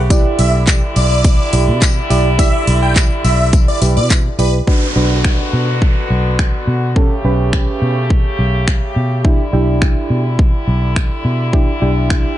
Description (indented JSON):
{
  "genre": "dance-pop",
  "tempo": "105 BPM",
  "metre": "4/4",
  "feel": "straight",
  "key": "unclear",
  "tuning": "A4 = 443 Hz",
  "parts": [
    { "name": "muted French horn section", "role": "sustained chords", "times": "0.0-12.4 s", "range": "C#3 to G4", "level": "-22 LUFS", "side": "equal", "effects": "sidechain pumping" },
    { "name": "vintage muted fingered electric bass", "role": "bass", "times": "0.0-12.2 s", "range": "B1 to B2", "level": "-15 LUFS", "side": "equal", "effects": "sidechain pumping" },
    { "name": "soft electric-piano-like synth keys", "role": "accompaniment", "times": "0.1-12.4 s", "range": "C#4 to D5", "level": "-20 LUFS", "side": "right 3 dB", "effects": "chorus, sidechain pumping" },
    { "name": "pop drum kit", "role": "drums", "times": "0.1-12.2 s", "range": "finger snaps, handclaps, hi-hat, kick drum", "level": "-14 LUFS", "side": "equal", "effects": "none" },
    { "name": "tambourine", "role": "percussion", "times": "0.1-4.5 s", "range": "none", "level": "-27 LUFS", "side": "left 13 dB", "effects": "none" },
    { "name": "supersaw chords", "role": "melody", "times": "0.4-4.5 s", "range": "B4 to G5", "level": "-20 LUFS", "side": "equal", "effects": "sidechain pumping" },
    { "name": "downlifter", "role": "sound effects", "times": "4.7-9.2 s", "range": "none", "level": "-25 LUFS", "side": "right 1 dB", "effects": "none" }
  ],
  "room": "little or no reverb",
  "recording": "nothing above 10.3 kHz",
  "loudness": "-12 LUFS",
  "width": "side -13 dB against mid",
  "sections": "0.0-4.7 A section; 4.7-12.4 B section",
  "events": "none",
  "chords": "0.1 Em7/B; 4.7 Bm; 7.0 A7/B; 9.2 Em7/B",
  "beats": "| 0.10 0.68 1.25 1.82 | 2.39 2.96 3.53 4.10 | 4.67 5.25 5.82 6.39 | 6.96 7.53 8.10 8.68 | 9.25 9.82 10.39 10.96 | 11.53 12.10"
}